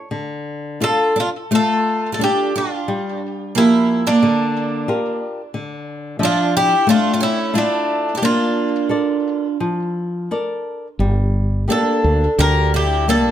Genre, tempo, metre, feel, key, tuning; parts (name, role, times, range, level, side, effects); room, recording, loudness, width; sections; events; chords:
fado-style ballad; 88 BPM; 4/4; rubato; D minor; A4 = 441 Hz
flamenco guitar; accompaniment; 0.0-13.3 s; D3 to E5; -21 LUFS; left 3 dB
Irish bouzouki; melody; 0.8-13.3 s; D4 to Bb4; -19 LUFS; equal; plate reverb, tape echo
picked twelve-string acoustic guitar; second line; 0.8-13.3 s; A3 to G4; -20 LUFS; right 4 dB
woody fretless electric bass; bass; 11.0-13.3 s; G1 to D2; -17 LUFS; equal
moderate small room reverb, RT60 0.5 s; -16 LUFS; side -10 dB against mid
0.1-13.3 A section
0.1 Dm; 2.9 Gm7; 5.5 Dmadd9; 8.2 Bbmaj7; 11.0 Gmadd9